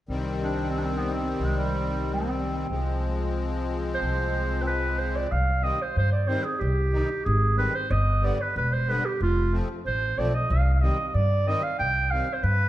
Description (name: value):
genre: klezmer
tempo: 93 BPM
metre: 2/4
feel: straight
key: C harmonic minor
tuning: A4 = 441 Hz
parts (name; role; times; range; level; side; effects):
- musette accordion; accompaniment; 0.1-12.3 s; D3 to Eb4; -32 LUFS; left 3 dB; none
- upright bass; bass; 0.1-12.7 s; E1 to G2; -26 LUFS; equal; none
- clear clarinet; melody; 0.4-12.7 s; G3 to G5; -27 LUFS; right 2 dB; none
room: moderate recital hall reverb, RT60 1.9 s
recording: none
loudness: -23 LUFS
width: side -14 dB against mid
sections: 0.1-5.3 A section; 5.3-12.7 B section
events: none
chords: 0.1 Cm; 2.7 Fm/C; 5.3 Cm; 7.9 G; 9.2 F; 10.5 Cm